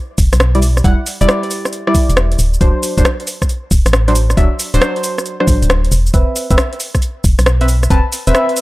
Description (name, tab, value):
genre	UK garage, two-step garage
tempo	136 BPM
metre	4/4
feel	swing 67% on 16ths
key	unclear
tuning	A4 = 440 Hz
part	organ-like FM bass	bass	0.2-8.3 s	D1 to B1	-13 LUFS	equal	tube saturation, sidechain pumping
part	electronic kick drum	drums	0.2-8.0 s	none	-13 LUFS	equal	overdrive
part	garage drum kit	drums	0.2-8.6 s	hi-hat, rim click, shaker	-18 LUFS	equal	overdrive
part	deep mellow chord stab	stabs	0.5-8.6 s	F#3 to A5	-18 LUFS	equal	chorus, tape echo
room	digital ambience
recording	dry, gritty hardware recording, transformer saturation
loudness	-11 LUFS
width	side -19 dB against mid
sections	0.0-8.6 A section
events	none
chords	0.0 Em7; 2.4 D7; 5.9 Cmaj7/E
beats	0.40 | 0.84 1.29 1.73 2.17 | 2.61 3.05 3.49 3.93 | 4.37 4.82 5.26 5.70 | 6.14 6.58 7.02 7.46 | 7.90 8.35